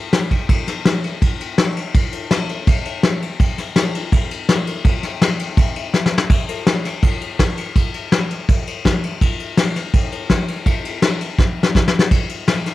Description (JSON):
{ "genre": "rock", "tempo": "165 BPM", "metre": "4/4", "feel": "straight", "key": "none", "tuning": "none", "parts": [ { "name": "soft brush drum kit", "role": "drums", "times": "0.1-12.7 s", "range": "kick drum, ride cymbal, snare drum", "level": "-16 LUFS", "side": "equal", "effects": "none" } ], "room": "light reverb", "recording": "1960s-style stereo", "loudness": "-16 LUFS", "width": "side -16 dB against mid", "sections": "0.0-6.3 A section; 6.3-12.7 B section", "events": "drum fill 5.9-6.3, 11.4-12.1", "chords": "none" }